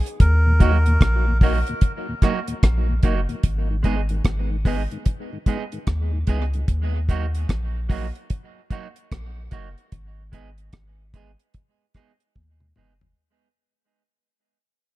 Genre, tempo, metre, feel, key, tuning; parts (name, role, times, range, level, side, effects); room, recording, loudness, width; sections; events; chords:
dub reggae; 74 BPM; 4/4; swing 62% on 16ths; Eb minor; A4 = 440 Hz
deep reggae drum kit; drums; 0.1-13.2 s; hi-hat, kick drum, rim click, toms; -19 LUFS; equal
melodica; melody; 0.2-1.4 s; Bb4; -28 LUFS; right 1 dB; tape echo
soft dub sub bass; bass; 0.2-13.1 s; Gb1 to Eb2; -21 LUFS; equal
mellow tonewheel organ; accompaniment; 0.5-6.6 s; Eb2 to Eb4; -31 LUFS; left 2 dB; overdrive, chorus vibrato, slow rotary speaker, tape echo
clean electric guitar; accompaniment; 0.6-12.9 s; Gb3 to Ab4; -30 LUFS; right 6 dB; tape echo
small room reverb; dark, warm production; -19 LUFS; side -17 dB against mid
0.2-13.2 A section
break 0.0; fade-out 0.2-13.2; drum fill 12.4-13.2
0.2 Ebm; 3.4 Abm; 6.7 Ebm; 9.9 Abm